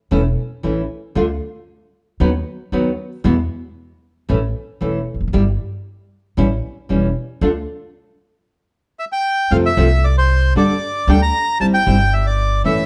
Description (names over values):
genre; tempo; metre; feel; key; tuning
tango; 115 BPM; 4/4; rubato; F major from 9.5 s; A4 = 440 Hz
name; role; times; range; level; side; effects
nylon-string guitar; accompaniment; 0.1-12.8 s; B2 to B4; -21 LUFS; equal; none
upright bass; bass; 0.1-12.9 s; E1 to F2; -20 LUFS; equal; none
bandoneon; melody; 9.0-12.9 s; C5 to Bb5; -21 LUFS; equal; none
room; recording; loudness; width
light reverb; dark, warm production; -18 LUFS; mono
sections
0.0-9.5 A section; 9.5-12.9 B section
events
none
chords
0.0 A; 1.2 N.C.; 2.2 B/D#; 3.2 E5; 4.3 A; 5.3 N.C.; 6.4 A7; 7.4 N.C.; 9.5 F; 10.6 Gmadd9; 11.6 C/G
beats
0.12 0.64 | 1.16 1.68 2.20 2.73 | 3.25 3.77 4.29 4.81 | 5.33 5.85 6.37 6.89 | 7.42 7.94 8.46 8.99 | 9.51 10.03 10.56 11.08 | 11.60 12.12 12.64